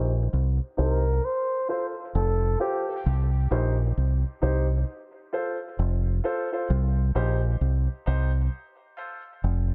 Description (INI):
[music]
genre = reggae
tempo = 66 BPM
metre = 4/4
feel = swing 63% on 16ths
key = C dorian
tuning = A4 = 439 Hz
[part]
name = warm upright piano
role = stabs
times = 0.0-9.2 s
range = Eb4 to C5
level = -34 LUFS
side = equal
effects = high-pass filter, low-pass filter, dub echo
[part]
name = deep dub fingered electric bass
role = bass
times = 0.0-9.7 s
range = F1 to C2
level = -25 LUFS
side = equal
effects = none
[part]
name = warm flugelhorn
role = melody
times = 0.8-3.0 s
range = G4 to C5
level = -31 LUFS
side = equal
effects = low-pass filter, dub echo
[sound]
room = digital ambience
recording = dark, warm production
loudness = -26 LUFS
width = mono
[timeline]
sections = 0.0-9.7 A section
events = filter sweep 0.0-9.7; filter sweep on upright piano 3.1-9.7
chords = 0.0 Cm; 1.2 F; 3.1 Cm; 4.9 F; 6.7 Cm; 8.5 F